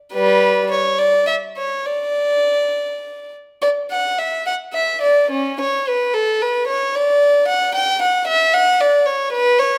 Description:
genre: classical, baroque-style suite movement for unaccompanied violin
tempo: 67-77 BPM (dotted quarters)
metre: 6/8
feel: rubato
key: D major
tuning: A4 = 435 Hz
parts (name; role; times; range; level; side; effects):
- rich violin; solo; 0.1-9.8 s; G3 to G5; -18 LUFS; equal; none
room: moderate recital hall reverb, RT60 1.3 s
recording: none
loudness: -18 LUFS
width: mono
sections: 0.0-3.6 A section; 3.6-9.8 B section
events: none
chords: none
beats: | 0.14 1.00 | 1.86 2.75 | 3.63 4.45 | 5.31 6.14 | 6.95 7.75 | 8.54 9.33

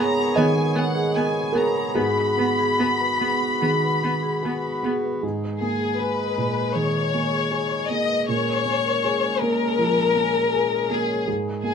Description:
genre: neoclassical piano and strings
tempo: 71-82 BPM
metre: 4/4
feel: rubato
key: G# minor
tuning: A4 = 441 Hz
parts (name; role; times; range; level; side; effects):
- rich chamber violin section; melody; 0.0-11.7 s; G#4 to B5; -23 LUFS; left 5 dB; none
- clear viola; accompaniment; 0.0-4.9 s; B3; -28 LUFS; right 1 dB; none
- felt-muted upright piano; accompaniment; 0.0-11.7 s; G#2 to D#5; -25 LUFS; right 2 dB; none
- hand-pumped harmonium; sustained chords; 0.0-11.7 s; G#3 to C#5; -30 LUFS; left 1 dB; none
- marimba with medium mallets; arpeggios; 0.0-11.7 s; G#4 to G#5; -28 LUFS; right 1 dB; none
room: moderate studio reverb, RT60 0.8 s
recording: minimal, uncompressed stereo recording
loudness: -20 LUFS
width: side -7 dB against mid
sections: 0.0-5.2 A section; 5.2-11.7 A section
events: none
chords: 0.0 G#madd9; 2.0 G#m7; 5.2 G#madd9; 8.3 A#m7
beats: 0.36 1.14 | 1.96 2.79 3.62 4.43 | 5.23 5.98 6.74 7.51 | 8.27 9.03 9.78 10.53 | 11.27

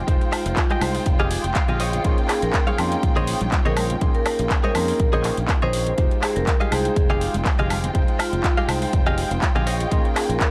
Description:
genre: nu-disco, nu disco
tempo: 122 BPM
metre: 4/4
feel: swing 54% on 16ths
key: F minor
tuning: A4 = 439 Hz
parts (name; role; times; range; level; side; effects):
- warm electric grand piano; accompaniment; 0.0-10.5 s; Ab3 to C6; -32 LUFS; equal; sidechain pumping
- warm studio string section; sustained chords; 0.0-10.5 s; F4 to G5; -33 LUFS; equal; sidechain pumping
- direct-recorded clean electric guitar; riff; 0.0-10.3 s; G4 to Ab5; -29 LUFS; equal; analog chorus
- fingered electric bass; bass; 0.1-10.4 s; F1 to F2; -28 LUFS; equal; sidechain pumping
- electronic kick drum; drums; 0.1-10.5 s; none; -24 LUFS; equal; none
- pop drum kit; drums; 0.1-10.5 s; handclaps, hi-hat, woodblock; -29 LUFS; equal; none
- vibraphone with medium hard mallets; melody; 0.3-10.4 s; F4 to C5; -29 LUFS; equal; none
- congas; percussion; 0.7-9.9 s; none; -36 LUFS; equal; none
room: little or no reverb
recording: dry, gritty hardware recording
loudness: -21 LUFS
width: mono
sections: 0.0-10.5 A section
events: clean electric guitar fill 1.1-2.0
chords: 0.0 Fm9; 1.8 Bbm11; 6.0 Fm9; 9.7 Bbm11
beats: | 0.08 0.57 1.06 1.55 | 2.05 2.54 3.03 3.52 | 4.01 4.51 5.00 5.49 | 5.98 6.47 6.96 7.46 | 7.95 8.44 8.93 9.42 | 9.92 10.41

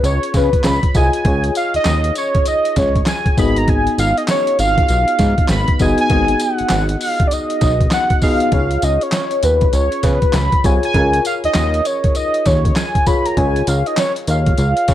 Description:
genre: R&B, new jack swing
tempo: 99 BPM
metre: 4/4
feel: swing 62% on 16ths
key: unclear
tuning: A4 = 440 Hz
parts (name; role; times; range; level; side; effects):
- warm velvety synth lead; melody; 0.0-14.9 s; B4 to B5; -18 LUFS; equal; chorus
- FM electric piano with auto-pan; accompaniment; 0.0-14.9 s; B3 to D#5; -22 LUFS; left 3 dB; none
- fat analog bass; bass; 0.0-14.9 s; G1 to C#3; -17 LUFS; equal; none
- boom bap sampler-style drum kit; drums; 0.0-14.9 s; handclaps, hi-hat, kick drum, snare drum, tambourine; -18 LUFS; equal; none
room: little or no reverb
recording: dark, warm production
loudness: -13 LUFS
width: side -12 dB against mid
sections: 0.0-14.9 A section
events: none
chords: 0.0 C#; 3.4 G#m7; 8.5 C#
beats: 0.04 0.65 | 1.25 1.86 2.46 3.07 | 3.68 4.28 4.89 5.50 | 6.10 6.71 7.31 7.92 | 8.53 9.13 9.74 10.34 | 10.95 11.56 12.16 12.77 | 13.37 13.98 14.59

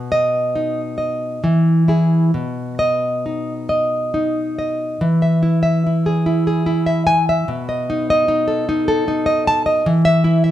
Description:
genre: romantic piece for solo classical guitar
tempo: 65-77 BPM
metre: 3/4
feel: rubato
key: E major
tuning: A4 = 439 Hz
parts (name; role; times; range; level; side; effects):
- nylon-string guitar; solo; 0.0-10.5 s; B2 to A5; -15 LUFS; equal; none
room: wet large studio reverb, RT60 1.0 s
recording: band playing live in one room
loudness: -15 LUFS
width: side -12 dB against mid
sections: 0.0-5.0 A section; 5.0-10.5 B section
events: none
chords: 0.0 B; 1.4 E; 2.3 B; 5.0 E; 7.5 B7; 9.9 N.C.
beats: 0.54 1.42 | 2.34 3.26 4.15 | 5.03 5.86 6.68 | 7.49 8.29 9.08 | 9.87

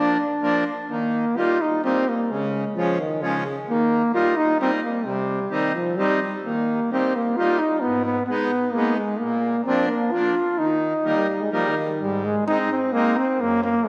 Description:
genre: alpine folk, alpine dance band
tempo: 130 BPM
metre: 3/4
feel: rubato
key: Eb major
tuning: A4 = 440 Hz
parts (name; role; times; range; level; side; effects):
- clear trombone; melody; 0.0-13.9 s; G3 to F4; -24 LUFS; equal; none
- accordion; accompaniment; 0.0-13.9 s; Gb2 to Eb4; -27 LUFS; equal; none
- warm euphonium; second line; 2.8-6.3, 11.1-12.0 s; Db3 to Ab3; -30 LUFS; equal; none
room: wet scoring stage reverb, RT60 2.1 s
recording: heard from further back in the room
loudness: -22 LUFS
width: mono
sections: 0.0-12.0 A section; 12.0-13.9 B section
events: none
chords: 0.0 Bb; 0.9 Eb; 2.3 Db; 3.7 Eb; 5.1 Cm; 6.5 Eb; 7.9 Abm; 9.2 Bb; 10.6 Eb; 12.0 Ab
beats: 0.42 | 0.90 1.37 1.84 | 2.30 2.76 3.23 | 3.68 4.14 4.59 | 5.05 5.51 5.98 | 6.45 6.92 7.39 | 7.85 8.31 8.77 | 9.23 9.68 10.14 | 10.60 11.06 11.54 | 12.01 12.48 12.95 | 13.41 13.87

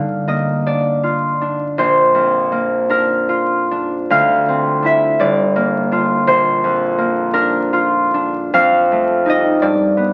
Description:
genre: classical, solo harp piece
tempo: 47-58 BPM (dotted quarters)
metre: 6/8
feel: rubato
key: G minor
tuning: A4 = 440 Hz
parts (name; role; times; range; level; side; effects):
- concert harp; solo; 0.0-10.1 s; G1 to F5; -16 LUFS; equal; none
room: moderate stone room reverb, RT60 0.9 s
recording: very old 78 rpm record, vinyl crackle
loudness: -16 LUFS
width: mono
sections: 0.0-10.1 A section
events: none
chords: 0.0 Gm7; 1.8 Bb; 4.1 Dm9; 5.2 Gm7; 6.3 Bbadd9; 8.5 F9; 9.6 G9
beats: 0.66 | 1.77 2.89 | 4.11 5.20 | 6.27 7.34 | 8.53 9.61

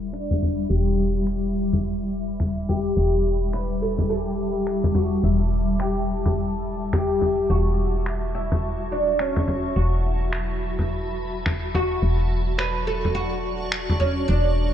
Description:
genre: organic downtempo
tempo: 106 BPM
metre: 4/4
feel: swing 59% on 16ths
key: E dorian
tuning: A4 = 440 Hz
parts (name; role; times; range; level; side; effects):
- oud; melody; 0.0-14.7 s; C#4 to B4; -26 LUFS; equal; digital delay
- granular cloud pad; sustained chords; 0.0-14.7 s; G3 to D6; -28 LUFS; left 1 dB; built-in reverb
- woody FM bass; bass; 0.0-14.7 s; E1; -26 LUFS; equal; none
- electronic finger snaps; drums; 0.1-13.9 s; none; -33 LUFS; equal; overdrive
- frame drum; percussion; 0.3-14.1 s; none; -25 LUFS; left 1 dB; none
room: light reverb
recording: low-pass filter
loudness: -21 LUFS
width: side -10 dB against mid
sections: 0.0-14.7 A section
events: filter sweep 0.0-14.7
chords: 0.0 Em7; 7.5 F#m7/E; 12.0 Dmaj7/E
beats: 0.14 | 0.70 1.27 1.84 2.40 | 2.97 3.54 4.10 4.67 | 5.23 5.80 6.37 6.93 | 7.50 8.06 8.63 9.20 | 9.76 10.33 10.89 11.46 | 12.03 12.59 13.16 13.72 | 14.29

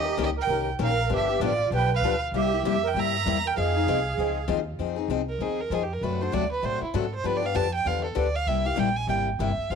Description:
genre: acoustic string swing (jazz manouche)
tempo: 195 BPM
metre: 4/4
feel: swing 59% on 8ths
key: unclear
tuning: A4 = 439 Hz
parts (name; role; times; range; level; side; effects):
- warm violin; melody; 0.0-9.8 s; E4 to Bb5; -28 LUFS; right 4 dB; none
- musette accordion; second line; 0.0-4.4 s; F4 to E5; -30 LUFS; right 12 dB; none
- picked steel-string acoustic guitar; accompaniment; 0.0-9.8 s; C3 to Bb4; -28 LUFS; left 12 dB; none
- upright bass; bass; 0.0-9.8 s; F1 to A2; -30 LUFS; right 1 dB; none
room: light reverb, small room ambience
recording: 1960s-style stereo with parts hard left and right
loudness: -23 LUFS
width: side -6 dB against mid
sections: 0.0-4.8 A section; 4.8-9.8 B section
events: violin solo 4.8-9.8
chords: 0.0 Eb7; 1.1 G7; 2.3 C7; 3.6 Fm7; 6.0 D7; 7.2 G7; 8.5 C7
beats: 0.18 0.49 0.80 | 1.10 1.41 1.72 2.02 | 2.33 2.64 2.94 3.25 | 3.56 3.87 4.17 4.48 | 4.79 5.09 5.40 5.71 | 6.02 6.32 6.63 6.94 | 7.25 7.55 7.86 8.17 | 8.48 8.79 9.09 9.40 | 9.71

